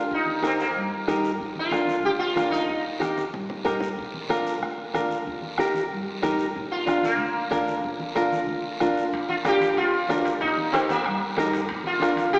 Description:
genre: latin, cumbia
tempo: 186 BPM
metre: 4/4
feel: straight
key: Bb major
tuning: A4 = 441 Hz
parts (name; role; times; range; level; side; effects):
- sitar; melody; 0.0-2.8, 6.7-12.4 s; Bb3 to G4; -24 LUFS; equal; none
- upright bass; bass; 0.0-12.4 s; Bb1 to G2; -38 LUFS; equal; none
- bombo; percussion; 0.1-12.2 s; none; -35 LUFS; equal; none
- congas; percussion; 0.1-12.4 s; none; -38 LUFS; equal; none
- guiro; percussion; 0.1-12.4 s; none; -40 LUFS; equal; none
- flamenco guitar; accompaniment; 0.4-12.2 s; D4 to Bb4; -25 LUFS; equal; none
- timbales; percussion; 9.1-12.4 s; none; -34 LUFS; equal; none
room: wet concert hall reverb, RT60 2.3 s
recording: recorded in a church or concert hall, AM radio sound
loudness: -22 LUFS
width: side -34 dB against mid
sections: 0.0-9.1 A section; 9.1-12.4 A section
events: drum fill 3.0-4.0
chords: 0.1 Eb; 1.4 Bb; 2.7 Eb; 4.0 Bb; 5.3 Eb; 6.6 Bb; 10.4 Eb; 11.7 Bb

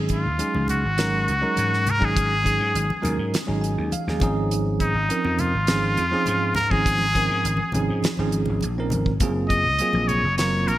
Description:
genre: electric jazz fusion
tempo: 102 BPM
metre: 4/4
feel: straight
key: unclear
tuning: A4 = 440 Hz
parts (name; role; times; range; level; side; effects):
- bell-like tine electric piano; accompaniment; 0.0-10.7 s; F3 to Ab5; -26 LUFS; right 2 dB; medium stereo tremolo
- vintage slap bass; bass; 0.0-10.8 s; Gb1 to Ab2; -25 LUFS; equal; none
- trumpet with straight mute; melody; 0.1-10.8 s; Eb4 to Eb5; -23 LUFS; left 1 dB; none
- damped 70s drum kit; drums; 0.1-10.8 s; hi-hat, kick drum, snare drum; -27 LUFS; equal; none
- congas; percussion; 0.5-10.2 s; none; -32 LUFS; left 2 dB; none
room: moderate lush hall reverb, RT60 2.1 s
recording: bright 1980s-style digital production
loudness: -20 LUFS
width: side -14 dB against mid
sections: 0.0-10.8 A section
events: tine electric piano fill 3.3-4.5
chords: 0.0 Ab7sus4; 4.2 Dbmaj9/Ab; 9.2 Gbmaj9#11

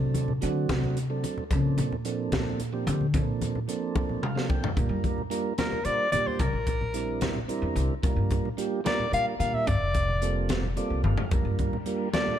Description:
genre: electric jazz fusion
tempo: 73 BPM (dotted quarters)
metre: 6/8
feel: straight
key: Bb lydian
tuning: A4 = 440 Hz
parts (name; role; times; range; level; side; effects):
- mellow tonewheel organ; accompaniment; 0.0-12.4 s; F3 to G5; -31 LUFS; right 5 dB; slow rotary speaker
- upright bass; bass; 0.0-11.7 s; F1 to G3; -28 LUFS; left 1 dB; none
- congas; percussion; 0.0-12.4 s; none; -34 LUFS; left 2 dB; none
- crisp fusion drum kit; drums; 0.1-12.3 s; hi-hat, kick drum, snare drum, toms; -31 LUFS; equal; none
- warm soprano saxophone; melody; 5.6-12.4 s; Bb4 to F5; -28 LUFS; left 1 dB; none
- string machine, violins; sustained chords; 11.3-12.4 s; G3 to D4; -38 LUFS; left 1 dB; ensemble chorus
room: light reverb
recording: dark, warm production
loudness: -25 LUFS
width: side -10 dB against mid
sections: 0.0-4.8 A section; 4.8-12.4 B section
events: upright bass solo 0.0-4.8; drum fill 4.0-4.8, 11.0; tonewheel organ fill 4.0-4.8, 10.5-11.3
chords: 0.0 D7; 1.5 Bbmaj9; 4.8 Bb6; 6.4 C9; 8.0 Bb6; 9.7 Gm11; 11.3 Bb6

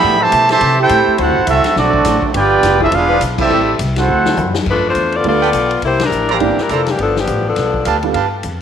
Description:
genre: jazz, big band swing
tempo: 207 BPM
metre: 4/4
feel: swing 59% on 8ths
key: G mixolydian from 4.7 s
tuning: A4 = 440 Hz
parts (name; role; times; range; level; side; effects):
- warm trumpet section; melody; 0.0-4.5 s; C4 to B5; -13 LUFS; right 1 dB; slapback echo
- brilliant trombone section; second line; 0.0-4.5 s; C3 to G4; -17 LUFS; right 8 dB; none
- upright bass; bass; 0.0-8.6 s; E1 to C3; -20 LUFS; left 1 dB; none
- swinging big-band drum kit; drums; 0.3-8.5 s; crash cymbal, hi-hat, kick drum, ride cymbal, snare drum, toms; -23 LUFS; left 5 dB; none
- bright trombone section; sustained chords; 1.2-3.6 s; F3 to C5; -24 LUFS; left 9 dB; none
- bright saxophone section; melody; 4.7-8.0 s; E3 to D5; -15 LUFS; left 3 dB; none
- warm grand piano; accompaniment; 5.3-8.1 s; G3 to F4; -20 LUFS; right 10 dB; none
- clear trumpet section; stabs; 5.4-8.3 s; E4 to Bb5; -20 LUFS; right 7 dB; none
room: moderate echo chamber reverb, RT60 1.6 s, studio reverb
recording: 1960s-style stereo with parts hard left and right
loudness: -12 LUFS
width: side -8 dB against mid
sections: 0.0-4.7 A section; 4.7-8.6 B section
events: band accent 3.4, 6.0; drum fill 4.1-4.7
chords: 0.0 Am7; 1.2 D9; 2.3 G7; 2.9 E7b9; 3.5 Am7; 4.1 D9; 4.7 G9; 5.8 C9; 7.0 G9

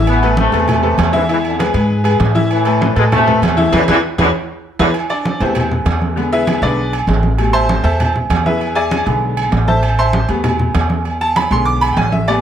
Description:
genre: latin, salsa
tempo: 196 BPM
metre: 4/4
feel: straight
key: A harmonic minor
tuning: A4 = 439 Hz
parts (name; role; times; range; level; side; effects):
- bright upright piano; accompaniment; 0.0-12.4 s; B2 to D6; -17 LUFS; left 2 dB; none
- upright bass; bass; 0.0-12.4 s; A1 to A2; -18 LUFS; equal; none
- mellow trombone section; melody; 0.1-4.9 s; F2 to B3; -16 LUFS; left 1 dB; none
- agogo bells and timbales; percussion; 0.1-12.4 s; none; -20 LUFS; right 5 dB; none
- congas; percussion; 0.1-12.4 s; none; -20 LUFS; right 1 dB; none
room: moderate studio reverb, RT60 0.8 s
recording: faint mains hum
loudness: -12 LUFS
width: side -9 dB against mid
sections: 0.0-4.9 A section; 4.9-12.4 B section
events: band accent 3.7-4.9; drum fill 4.0-4.9; upright piano solo 4.9-12.4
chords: 0.1 Amadd9; 1.3 E7; 2.5 Amadd9; 3.7 E7; 4.9 Amadd9; 6.2 E7; 7.4 Amadd9; 8.6 E7; 9.8 Amadd9; 11.1 E7

